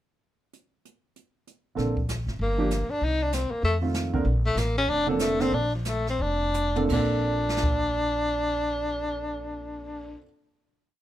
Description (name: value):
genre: jazz, small-group swing and bop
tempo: 164-194 BPM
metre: 4/4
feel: swing 62% on 8ths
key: Bb major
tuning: A4 = 440 Hz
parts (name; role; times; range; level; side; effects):
- jazz brush drum kit; drums; 0.5-7.7 s; brushed snare drum, crash cymbal, hi-hat, kick drum, snare drum, toms; -31 LUFS; equal; none
- warm upright piano; accompaniment; 1.8-10.2 s; Bb2 to Bb4; -29 LUFS; right 3 dB; none
- upright bass; bass; 1.8-10.1 s; F1 to F2; -29 LUFS; equal; none
- breathy tenor saxophone; melody; 2.4-10.2 s; F3 to Eb4; -27 LUFS; left 1 dB; plate reverb
room: moderate studio reverb, RT60 0.5 s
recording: none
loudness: -24 LUFS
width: side -13 dB against mid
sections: 0.5-1.8 pickup bar; 1.8-6.9 A section; 6.9-9.8 final chord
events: slowing down 4.2-6.9; drum fill 6.5-6.9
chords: 0.5 N.C.; 1.8 Bbmaj9; 2.4 Gm7; 3.0 Cm; 3.6 F7; 4.2 Bbmaj9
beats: | 0.53 0.84 1.15 1.46 | 1.77 2.08 2.39 2.70 | 3.01 3.32 3.63 3.94 | 4.25 4.56 4.87 5.19 | 5.52 5.85 6.19 6.54 | 6.89 7.26 7.63 7.99 | 8.36 8.73 9.09 9.46